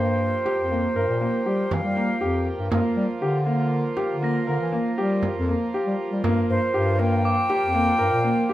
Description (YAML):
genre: contemporary instrumental, chamber music in an uneven meter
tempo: 119 BPM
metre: 7/4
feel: straight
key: G minor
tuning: A4 = 440 Hz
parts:
  - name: concert flute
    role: melody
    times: 0.0-8.5 s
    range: C5 to G5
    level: -24 LUFS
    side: equal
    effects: none
  - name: pedal harmonium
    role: sustained chords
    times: 0.0-8.5 s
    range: F3 to G4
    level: -30 LUFS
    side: right 2 dB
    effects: none
  - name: warm concert grand piano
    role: arpeggios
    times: 0.0-8.5 s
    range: Bb3 to Bb4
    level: -25 LUFS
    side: equal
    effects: none
  - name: mellow bass clarinet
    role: bass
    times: 0.0-8.5 s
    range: F2 to G3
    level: -25 LUFS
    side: left 1 dB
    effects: none
  - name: frame drum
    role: percussion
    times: 0.5-8.5 s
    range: none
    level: -29 LUFS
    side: right 3 dB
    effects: none
  - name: crotales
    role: texture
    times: 4.2-8.0 s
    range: D6 to Bb6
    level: -32 LUFS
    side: right 1 dB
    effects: none
room: moderate studio reverb, RT60 0.7 s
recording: none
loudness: -20 LUFS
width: side -14 dB against mid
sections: 0.0-8.5 A section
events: none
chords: 0.0 Gm7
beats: 0.20 0.71 1.21 1.71 2.21 | 2.72 3.22 3.72 4.23 4.73 5.23 5.73 | 6.24 6.74 7.24 7.75 8.25